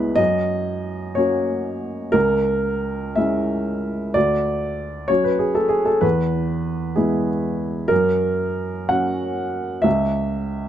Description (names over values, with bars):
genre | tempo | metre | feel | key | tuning
neoclassical minimalist piano | 56-66 BPM (dotted quarters) | 6/8 | rubato | unclear | A4 = 440 Hz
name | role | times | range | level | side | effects
warm upright piano | solo | 0.0-10.7 s | C#2 to F#5 | -19 LUFS | equal | none
room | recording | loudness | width
light reverb | close, detailed microphones | -19 LUFS | side -10 dB against mid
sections
0.2-10.7 A section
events
none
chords
0.2 F#; 2.1 C#m; 4.2 Dmaj7; 6.0 E; 7.9 F#; 9.8 C#m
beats
| 0.18 1.18 | 2.15 3.18 | 4.15 5.09 | 6.04 6.98 | 7.90 8.91 | 9.85